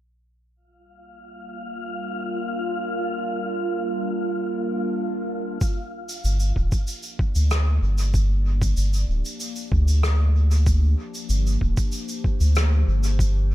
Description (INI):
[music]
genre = ambient dub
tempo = 95 BPM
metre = 4/4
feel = straight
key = G minor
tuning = A4 = 440 Hz
[part]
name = warbly tape-like pad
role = sustained chords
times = 1.5-13.5 s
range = F3 to D5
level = -30 LUFS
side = equal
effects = chorus, built-in reverb, phaser
[part]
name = wind-like tuned noise texture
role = texture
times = 1.3-5.6 s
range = F4 to F5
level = -31 LUFS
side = right 1 dB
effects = built-in reverb
[part]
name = electronic kick drum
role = drums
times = 5.6-13.3 s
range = none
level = -22 LUFS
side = equal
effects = none
[part]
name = shaker and rim click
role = drums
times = 5.6-13.3 s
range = none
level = -32 LUFS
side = equal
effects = dub echo
[part]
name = soft dub sub bass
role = bass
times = 6.2-13.5 s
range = D1 to D2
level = -19 LUFS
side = equal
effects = none
[sound]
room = little or no reverb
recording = faint mains hum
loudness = -20 LUFS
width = side -14 dB against mid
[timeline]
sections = 0.6-5.6 A section; 5.6-13.5 B section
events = filter sweep on ambient pad 0.6-5.6; fade-in on ambient pad 5.6-13.5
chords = 0.6 Gm7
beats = | 0.56 1.19 1.82 2.46 | 3.09 3.72 4.35 4.98 | 5.61 6.25 6.88 7.51 | 8.14 8.77 9.40 10.04 | 10.67 11.30 11.93 12.56 | 13.19